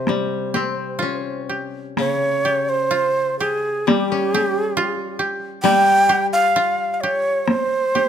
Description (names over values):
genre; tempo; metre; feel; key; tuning
japanese traditional, Japanese chamber music; 62-69 BPM; 2/4; rubato; unclear; A4 = 442 Hz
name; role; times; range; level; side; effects
breathy bright shakuhachi; melody; 0.0-8.1 s; G4 to G5; -19 LUFS; right 2 dB; none
koto; second line; 0.0-8.1 s; F4 to G4; -25 LUFS; right 2 dB; none
koto; accompaniment; 0.0-8.1 s; C3 to Db4; -25 LUFS; left 7 dB; none
taiko ensemble; percussion; 0.1-8.1 s; none; -23 LUFS; left 1 dB; none
room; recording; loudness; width
light reverb; close, detailed microphones; -17 LUFS; side -9 dB against mid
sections
0.0-2.0 A section; 2.0-8.1 B section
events
none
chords
none